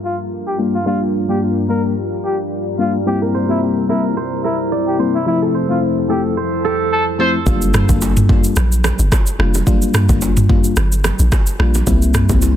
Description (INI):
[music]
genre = afrobeats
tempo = 109 BPM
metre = 4/4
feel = swing 55% on 16ths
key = G dorian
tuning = A4 = 440 Hz
[part]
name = clear trumpet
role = melody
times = 0.0-7.3 s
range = E4 to C5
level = -23 LUFS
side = equal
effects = digital delay
[part]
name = deep dark ambient pad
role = sustained chords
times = 0.0-7.4 s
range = F2 to Bb4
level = -22 LUFS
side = left 2 dB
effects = chorus, built-in reverb, sidechain pumping
[part]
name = mellow FM electric piano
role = accompaniment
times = 0.6-12.6 s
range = F3 to F4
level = -19 LUFS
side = left 3 dB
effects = chorus
[part]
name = kora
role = riff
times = 3.2-8.5 s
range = A4 to D5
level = -23 LUFS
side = right 9 dB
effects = digital delay
[part]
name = deep log drum bass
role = bass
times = 7.5-12.6 s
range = F1 to C2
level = -15 LUFS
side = equal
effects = none
[part]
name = afro-pop drum kit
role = drums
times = 7.5-12.6 s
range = kick drum, rim click, shaker, toms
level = -15 LUFS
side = equal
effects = overdrive
[part]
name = congas and bongos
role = percussion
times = 7.5-12.6 s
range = none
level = -26 LUFS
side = right 7 dB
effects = none
[sound]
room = small room reverb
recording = dense, heavily limited modern master, low-pass filter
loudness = -14 LUFS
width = side -11 dB against mid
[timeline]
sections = 0.0-7.5 A section; 7.5-12.6 B section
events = filter sweep 0.0-7.5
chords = 0.0 Gm7; 3.1 C7; 5.3 Fmaj7; 7.5 Gm7; 11.9 C7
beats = 0.31 | 0.86 1.41 1.96 2.51 | 3.06 3.61 4.16 4.71 | 5.26 5.81 6.36 6.92 | 7.46 8.02 8.57 9.12 | 9.67 10.22 10.77 11.32 | 11.87 12.42